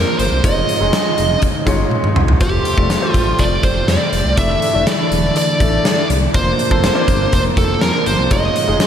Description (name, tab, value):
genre	1980s-style pop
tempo	122 BPM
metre	4/4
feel	straight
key	unclear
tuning	A4 = 440 Hz
part	high-gain lead guitar	melody	0.0-8.9 s	G4 to E5	-18 LUFS	right 2 dB	distortion
part	clear grand piano	accompaniment	0.0-8.9 s	Ab3 to D5	-21 LUFS	left 3 dB	none
part	string machine, full ensemble	sustained chords	0.0-8.9 s	C3 to F4	-24 LUFS	equal	phaser, ensemble chorus
part	smooth synth bass	bass	0.0-8.8 s	E1 to F2	-19 LUFS	equal	none
part	big rock drum kit	drums	0.2-8.9 s	hi-hat, kick drum, snare drum, toms	-17 LUFS	equal	none
room	moderate lush hall reverb, RT60 1.9 s, small room ambience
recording	big arena sound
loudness	-13 LUFS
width	side -9 dB against mid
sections	0.0-8.9 A section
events	drum fill 1.9-2.4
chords	0.4 Dbadd9/F; 2.4 Fadd9; 4.4 Dsus2; 6.3 Bbadd9/F; 8.3 Dbadd9/F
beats	| 0.44 0.93 1.42 1.92 | 2.41 2.90 3.39 3.88 | 4.37 4.87 5.36 5.85 | 6.34 6.83 7.33 7.82 | 8.31 8.80